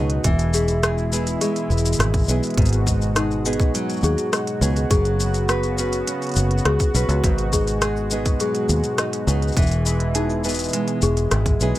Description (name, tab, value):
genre	folktronica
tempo	103 BPM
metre	4/4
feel	straight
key	G# minor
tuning	A4 = 440 Hz
part	celesta	second line	0.0-11.8 s	D#4 to G#4	-27 LUFS	left 3 dB	tape echo, plate reverb
part	warm analog pad	sustained chords	0.0-11.8 s	B2 to F#4	-27 LUFS	equal	chorus, vintage 12-bit sampler grit
part	nylon-string guitar	arpeggios	0.0-11.8 s	G#2 to B4	-25 LUFS	right 2 dB	digital delay
part	fingered electric bass	bass	0.0-11.7 s	E1 to D#2	-21 LUFS	equal	none
part	organic electronic drum kit	drums	0.1-11.8 s	hi-hat, rim click, shaker	-26 LUFS	left 1 dB	none
part	electronic kick drum	drums	0.2-11.6 s	none	-20 LUFS	equal	none
room	light reverb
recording	none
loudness	-18 LUFS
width	side -15 dB against mid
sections	0.0-11.8 A section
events	none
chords	0.2 E; 2.6 G#m7; 4.9 F#sus4; 7.2 G#m7; 9.6 E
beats	| 0.25 0.83 1.41 1.99 | 2.58 3.16 3.74 4.32 | 4.91 5.49 6.07 6.65 | 7.24 7.82 8.40 8.98 | 9.57 10.15 10.73 11.31